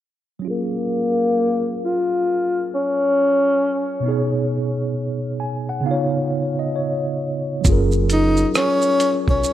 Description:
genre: lo-fi hip hop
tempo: 67 BPM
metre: 4/4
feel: swing 62% on 16ths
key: F# major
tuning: A4 = 443 Hz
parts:
  - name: mellow tine electric piano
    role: accompaniment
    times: 0.4-9.5 s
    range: B2 to G#5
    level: -23 LUFS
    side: right 1 dB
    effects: medium stereo tremolo, cassette tape, low-pass filter
  - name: warm tenor saxophone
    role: melody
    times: 0.5-9.5 s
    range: A#3 to E#4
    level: -18 LUFS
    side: left 1 dB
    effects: low-pass filter, analog delay
  - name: lo-fi sampler-style drum kit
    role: drums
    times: 7.6-9.5 s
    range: hi-hat, kick drum, rim click, shaker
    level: -20 LUFS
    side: right 1 dB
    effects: none
  - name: upright bass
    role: bass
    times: 7.7-9.4 s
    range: F#1 to B1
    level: -20 LUFS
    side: right 1 dB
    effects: none
room: moderate plate reverb, RT60 3.1 s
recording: rough home demo mix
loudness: -18 LUFS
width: side -12 dB against mid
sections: 0.5-7.6 A section; 7.6-9.5 B section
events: filter sweep 0.5-7.6; tine electric piano fill 5.0-7.6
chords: 0.5 F#maj9; 4.1 B69; 5.9 C#9; 7.6 F#maj9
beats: | 0.48 1.38 2.27 3.17 | 4.06 4.96 5.85 6.75 | 7.64 8.54 9.44

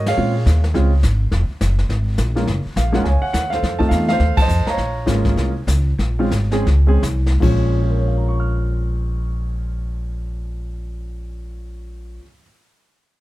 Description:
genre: jazz piano trio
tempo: 146-208 BPM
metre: 4/4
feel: swing 62% on 8ths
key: Bb minor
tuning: A4 = 439 Hz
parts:
  - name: warm grand piano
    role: melody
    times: 0.0-12.5 s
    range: Bb2 to F6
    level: -21 LUFS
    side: right 1 dB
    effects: plate reverb
  - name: upright bass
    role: bass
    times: 0.0-12.2 s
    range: F1 to Bb2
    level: -18 LUFS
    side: equal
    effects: none
  - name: jazz brush drum kit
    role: drums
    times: 0.1-7.7 s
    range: brushed snare drum, crash cymbal, hi-hat, kick drum, ride cymbal, snare drum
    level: -23 LUFS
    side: left 1 dB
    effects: none
room: light reverb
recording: dark, warm production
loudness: -16 LUFS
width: side -16 dB against mid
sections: 0.0-7.4 A section; 7.4-10.7 B section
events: band accent 0.0, 4.4; slowing down 4.8-7.4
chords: 0.2 Bbm7; 2.5 Gbmaj7; 3.6 F7; 4.8 Bbm7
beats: | 0.17 0.46 0.75 1.04 | 1.32 1.61 1.90 2.19 | 2.48 2.77 3.06 3.34 | 3.63 3.92 4.21 4.50 | 4.78 5.07 5.37 5.67 | 5.98 6.31 6.66 7.02 | 7.42 7.83 8.24 8.65 | 9.07 9.48 9.89 10.30

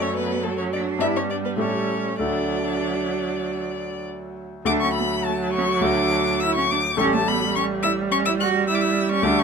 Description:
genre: quick classical-period movement for piano quartet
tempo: 96-108 BPM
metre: 4/4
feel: rubato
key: D major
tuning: A4 = 440 Hz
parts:
  - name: rich violin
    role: melody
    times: 0.0-9.4 s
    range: A4 to F#6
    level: -25 LUFS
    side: left 6 dB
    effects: none
  - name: rich cello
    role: second line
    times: 0.0-9.4 s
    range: A3 to F#4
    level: -27 LUFS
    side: right 6 dB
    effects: none
  - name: bright concert grand piano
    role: accompaniment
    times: 0.0-9.4 s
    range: A1 to D5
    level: -26 LUFS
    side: left 2 dB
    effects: none
  - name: warm viola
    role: accompaniment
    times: 0.0-9.4 s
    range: F#3 to G3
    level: -26 LUFS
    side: right 5 dB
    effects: none
room: light reverb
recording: minimal, uncompressed stereo recording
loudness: -20 LUFS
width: side -6 dB against mid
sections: 0.0-4.7 A section; 4.7-9.4 A section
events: none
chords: 0.0 D/F#; 1.0 G6; 1.6 A7; 2.2 D; 7.0 A9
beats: 0.44 1.02 1.61 | 2.22 2.84 3.46 4.07 | 4.67 5.25 5.83 6.41 | 6.99 7.56 8.12 8.68 | 9.25

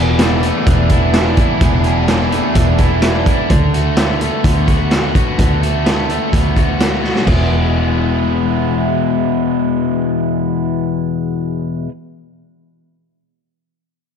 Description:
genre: rock, shoegaze and dream pop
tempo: 127 BPM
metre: 4/4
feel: straight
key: E mixolydian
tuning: A4 = 440 Hz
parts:
  - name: biting overdriven guitar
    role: riff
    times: 0.0-11.9 s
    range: E2 to F#4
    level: -20 LUFS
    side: right 13 dB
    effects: reverse reverb
  - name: biting overdriven guitar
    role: riff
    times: 0.0-3.5 s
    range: E3 to G#4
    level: -20 LUFS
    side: right 1 dB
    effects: none
  - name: crunchy overdriven guitar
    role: riff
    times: 0.0-11.9 s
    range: E2 to G#4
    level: -18 LUFS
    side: left 14 dB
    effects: analog chorus
  - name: vintage muted picked electric bass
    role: bass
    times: 0.0-11.8 s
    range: E1 to D2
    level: -18 LUFS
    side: equal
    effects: none
  - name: raw garage drum kit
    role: drums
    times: 0.2-7.4 s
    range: crash cymbal, hi-hat, kick drum, snare drum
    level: -16 LUFS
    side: equal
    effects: none
room: light reverb, studio reverb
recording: dark, warm production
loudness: -12 LUFS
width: side -7 dB against mid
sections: 0.0-7.3 A section; 7.3-11.1 B section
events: drum fill 7.0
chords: 0.0 E7sus4; 3.5 D6; 7.3 E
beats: 0.19 0.66 1.13 | 1.60 2.08 2.55 3.02 | 3.49 3.96 4.43 4.91 | 5.38 5.85 6.33 6.80 | 7.27 7.75 8.22 8.70 | 9.17 9.64 10.12 10.59

